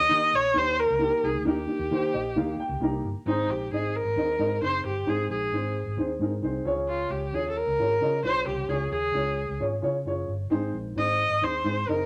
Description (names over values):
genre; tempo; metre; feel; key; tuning
uptempo 1960s-style soul; 132 BPM; 4/4; straight; Ab major; A4 = 440 Hz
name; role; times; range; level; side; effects
warm viola; melody; 0.0-12.1 s; Eb4 to Eb5; -28 LUFS; equal; none
dark upright piano; accompaniment; 0.0-12.1 s; Ab2 to Bb5; -32 LUFS; equal; none
vintage muted fingered electric bass; bass; 0.0-12.1 s; Gb1 to Eb3; -36 LUFS; equal; none
room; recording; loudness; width
moderate club reverb, RT60 0.8 s; none; -27 LUFS; mono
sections
0.0-3.3 A section; 3.3-12.1 B section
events
upright piano fill 1.9-3.3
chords
0.0 Eb; 3.3 Ab; 6.7 Db; 10.5 Ab